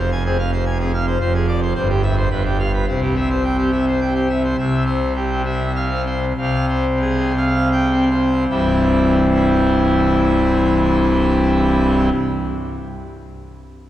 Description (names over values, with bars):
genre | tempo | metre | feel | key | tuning
classical, organ toccata | 75-110 BPM | 3/4 | straight | C major | A4 = 439 Hz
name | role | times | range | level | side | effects
pipe organ, full organ | solo | 0.0-12.1 s | C1 to Ab5 | -16 LUFS | equal | none
room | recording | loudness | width
wet church reverb, RT60 3.8 s | worn, warbling old tape, cassette tape, warbly pitch drift | -15 LUFS | side -12 dB against mid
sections
0.0-4.6 A section; 4.6-8.5 B section; 8.5-13.3 C section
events
slowing down 3.7-8.5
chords
0.0 Fm; 1.2 Dm7b5/F; 1.7 C/G; 2.3 G7; 2.9 C; 6.4 Fm/C; 8.5 C